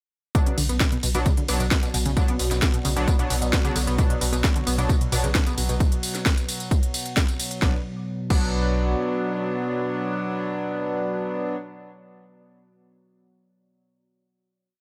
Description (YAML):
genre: driving peak-time techno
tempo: 132 BPM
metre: 4/4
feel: straight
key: B minor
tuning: A4 = 440 Hz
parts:
  - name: tight sequenced synth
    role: riff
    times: 0.3-8.4 s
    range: B2 to B3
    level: -32 LUFS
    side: equal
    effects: chorus, phaser, overdrive, sidechain pumping, digital delay
  - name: sync-sweep polysynth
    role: stabs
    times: 0.3-11.6 s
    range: F#3 to D4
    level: -31 LUFS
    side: equal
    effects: chorus, sidechain pumping, tape echo
  - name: analog drone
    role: drone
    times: 1.5-10.9 s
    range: B2 to F#3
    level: -36 LUFS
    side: equal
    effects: chorus, sidechain pumping
  - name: electronic kick drum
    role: drums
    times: 0.3-8.4 s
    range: none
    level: -24 LUFS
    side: equal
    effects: none
  - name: techno drum kit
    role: drums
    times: 0.3-8.4 s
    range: crash cymbal, hi-hat, ride cymbal, snare drum, tambourine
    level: -30 LUFS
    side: equal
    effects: none
  - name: deep dark ambient pad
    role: texture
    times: 1.7-11.1 s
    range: B3 to D5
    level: -38 LUFS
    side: equal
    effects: none
  - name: saturated sub bass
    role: bass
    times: 0.6-8.9 s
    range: B1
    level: -28 LUFS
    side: equal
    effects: overdrive, sidechain pumping, low-pass filter
room: light reverb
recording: none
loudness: -24 LUFS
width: mono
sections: 0.3-7.6 drop; 7.6-11.3 final chord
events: drop 0.3-7.6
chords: 0.3 Bm